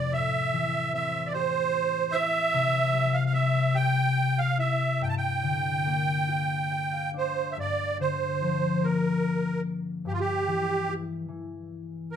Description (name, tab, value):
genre	celtic folk, Celtic slow air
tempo	49 BPM (dotted quarters)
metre	6/8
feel	rubato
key	G dorian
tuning	A4 = 442 Hz
part	musette accordion	melody	0.0-12.2 s	F4 to A5	-26 LUFS	right 4 dB	none
part	concert harp	accompaniment	0.0-12.2 s	F2 to G5	-28 LUFS	left 4 dB	none
room	wet studio reverb, RT60 0.8 s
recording	band playing live in one room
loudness	-24 LUFS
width	side -8 dB against mid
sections	0.0-7.6 A section; 7.6-12.2 B section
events	harp fill 6.3-7.6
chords	0.1 Am7; 2.5 C; 5.0 Gm7; 10.1 Gm6